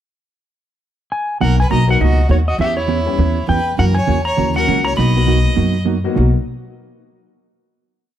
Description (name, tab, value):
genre	country, western swing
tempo	202 BPM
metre	4/4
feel	swing 60% on 8ths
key	B major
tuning	A4 = 441 Hz
part	clean lap steel guitar	melody	1.1-5.8 s	C#5 to B5	-20 LUFS	left 1 dB	none
part	clear fiddle	second line	1.4-5.8 s	E4 to D#5	-24 LUFS	right 2 dB	none
part	hollow-body jazz guitar	accompaniment	1.4-6.3 s	B2 to G4	-20 LUFS	right 7 dB	none
part	upright bass	bass	1.4-6.3 s	B1 to F#2	-16 LUFS	left 1 dB	none
part	warm upright piano	accompaniment	1.9-6.3 s	F#3 to G4	-24 LUFS	left 8 dB	none
room	light reverb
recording	none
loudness	-13 LUFS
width	side -11 dB against mid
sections	0.2-1.4 pickup bar; 1.4-6.2 A section; 6.2-7.4 final chord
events	none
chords	0.2 N.C.; 1.4 Bmaj7; 2.6 Em6; 3.8 F#7; 5.0 Bmaj7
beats	| 0.23 0.52 0.82 1.11 | 1.41 1.70 2.00 2.29 | 2.59 2.89 3.18 3.48 | 3.77 4.07 4.37 4.67 | 4.96 5.26 5.56 5.86 | 6.16